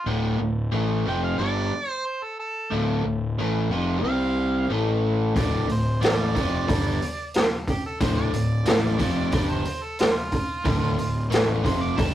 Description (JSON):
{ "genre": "blues rock power trio and southern rock", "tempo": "91 BPM", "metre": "4/4", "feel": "straight", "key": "D minor", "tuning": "A4 = 441 Hz", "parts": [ { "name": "warm harmonica", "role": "melody", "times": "0.0-12.1 s", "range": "F4 to D6", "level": "-30 LUFS", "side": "right 2 dB", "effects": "overdrive" }, { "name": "biting overdriven guitar", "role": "riff", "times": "0.1-12.1 s", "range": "D2 to C4", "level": "-25 LUFS", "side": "equal", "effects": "none" }, { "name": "fuzz fingered electric bass", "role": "bass", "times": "0.1-12.1 s", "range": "D1 to C2", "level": "-26 LUFS", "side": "left 1 dB", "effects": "overdrive" }, { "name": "raw garage drum kit", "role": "drums", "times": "5.4-12.1 s", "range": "hi-hat, kick drum, snare drum", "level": "-24 LUFS", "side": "equal", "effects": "none" } ], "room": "moderate small room reverb, RT60 0.5 s", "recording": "rough rehearsal-room recording", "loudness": "-21 LUFS", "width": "side -12 dB against mid", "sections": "0.0-12.1 A section", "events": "none", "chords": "0.0 Dm; 4.0 C5; 4.7 A5; 5.4 Dm" }